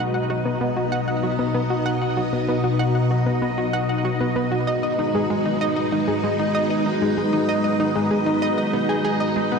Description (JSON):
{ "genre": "ambient, sequencer-driven space music", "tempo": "96 BPM", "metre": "4/4", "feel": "straight", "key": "G# minor", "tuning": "A4 = 440 Hz", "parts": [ { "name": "string machine, full ensemble", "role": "sustained chords", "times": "0.0-9.6 s", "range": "B2 to D#5", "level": "-22 LUFS", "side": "left 1 dB", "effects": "ensemble chorus, shimmer reverb" }, { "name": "analog pluck", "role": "riff", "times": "0.0-9.6 s", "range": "G#3 to F#5", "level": "-24 LUFS", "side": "equal", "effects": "chorus, cassette tape, tape echo, shimmer reverb" }, { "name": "bubbling stepped-filter texture", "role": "texture", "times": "0.0-9.6 s", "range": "D#4 to D#5", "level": "-27 LUFS", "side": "left 1 dB", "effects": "chorus, built-in reverb, shimmer reverb" } ], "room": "wet huge ambient reverb, RT60 8.2 s", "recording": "dark, warm production", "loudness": "-19 LUFS", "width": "side -5 dB against mid", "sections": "0.0-9.6 A section", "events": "none", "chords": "0.0 B; 4.7 G#m7" }